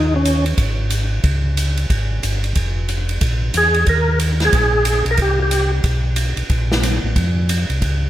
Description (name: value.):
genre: soul jazz organ trio.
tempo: 182 BPM.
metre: 4/4.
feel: swing 63% on 8ths.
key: unclear.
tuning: A4 = 442 Hz.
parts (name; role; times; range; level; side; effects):
percussive tonewheel organ; melody; 0.0-0.4, 3.6-5.7 s; Db4 to Bb4; -18 LUFS; equal; slow rotary speaker, overdrive, chorus vibrato.
mellow tonewheel organ; bass; 0.0-8.1 s; F1 to F2; -18 LUFS; equal; slow rotary speaker.
swinging big-band drum kit; drums; 0.3-7.9 s; hi-hat, kick drum, ride cymbal, snare drum; -21 LUFS; equal; none.
room: light reverb, small room ambience.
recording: rough home demo mix.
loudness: -15 LUFS.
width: side -13 dB against mid.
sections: 0.0-8.1 A section.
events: none.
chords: 0.0 Dbsus2/Eb; 0.6 N.C.; 1.2 Db5; 2.6 N.C.; 3.2 E; 3.9 Eb5; 5.2 C5; 5.8 N.C.; 6.5 Bbm.